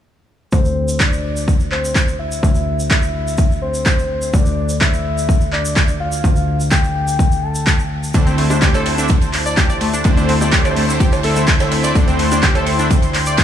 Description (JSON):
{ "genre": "progressive house", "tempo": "126 BPM", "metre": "4/4", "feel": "straight", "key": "unclear", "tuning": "A4 = 440 Hz", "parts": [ { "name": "soft octave-layered synth lead", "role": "melody", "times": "0.5-8.1 s", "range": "C5 to A5", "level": "-24 LUFS", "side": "left 2 dB", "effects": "chorus, dub echo" }, { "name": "plucky analog bass", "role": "bass", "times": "0.5-13.4 s", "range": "D2", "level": "-20 LUFS", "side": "left 1 dB", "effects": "sidechain pumping" }, { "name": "electronic kick drum", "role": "drums", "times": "0.5-13.4 s", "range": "none", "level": "-15 LUFS", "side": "equal", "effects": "overdrive" }, { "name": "egg shaker", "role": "percussion", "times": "0.5-13.4 s", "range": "none", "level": "-29 LUFS", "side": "right 1 dB", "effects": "none" }, { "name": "pop drum kit", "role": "drums", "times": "1.0-13.4 s", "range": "handclaps, hi-hat", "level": "-21 LUFS", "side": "equal", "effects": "overdrive, sidechain pumping on hats" }, { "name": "warm analog pad", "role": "sustained chords", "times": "8.1-13.4 s", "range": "E4 to C6", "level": "-24 LUFS", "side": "left 1 dB", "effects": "chorus, sidechain pumping" }, { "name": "analog pluck", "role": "arpeggios", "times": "8.1-13.4 s", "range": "A3 to D5", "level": "-22 LUFS", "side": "equal", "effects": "chorus, cassette tape, sidechain pumping, dub echo" }, { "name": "soft supersaw", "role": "stabs", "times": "8.1-12.9 s", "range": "D3 to E5", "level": "-21 LUFS", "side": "right 2 dB", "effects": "sidechain pumping, dub echo" }, { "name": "compact cocktail drum kit", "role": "drums", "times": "8.1-13.4 s", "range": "hi-hat, ride cymbal, snare drum", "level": "-29 LUFS", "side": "right 2 dB", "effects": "none" }, { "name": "bongos and cowbell", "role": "percussion", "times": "8.5-12.6 s", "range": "none", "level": "-27 LUFS", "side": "right 4 dB", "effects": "none" } ], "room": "small room reverb", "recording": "studio reverb", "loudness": "-13 LUFS", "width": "side -10 dB against mid", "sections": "0.5-13.4 A section", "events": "none", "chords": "0.5 Dm9; 8.1 Am/D", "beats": "| 0.53 1.00 1.48 1.96 | 2.43 2.91 3.38 3.86 | 4.34 4.81 5.29 5.76 | 6.24 6.72 7.19 7.67 | 8.14 8.62 9.10 9.57 | 10.05 10.53 11.00 11.48 | 11.96 12.43 12.91 13.38" }